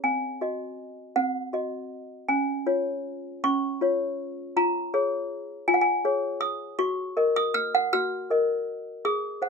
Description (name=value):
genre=classical, lullaby for toy piano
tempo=54 BPM (dotted quarters)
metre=6/8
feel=straight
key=Db major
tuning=A4 = 440 Hz
part: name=toy piano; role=solo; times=0.0-9.5 s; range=C4 to F6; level=-24 LUFS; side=left 1 dB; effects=none
room=light reverb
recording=rough home demo mix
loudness=-24 LUFS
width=side -5 dB against mid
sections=0.0-9.5 A section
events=none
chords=0.0 Ab7/C; 2.3 Db; 4.6 Db/F; 6.8 Ebm/Gb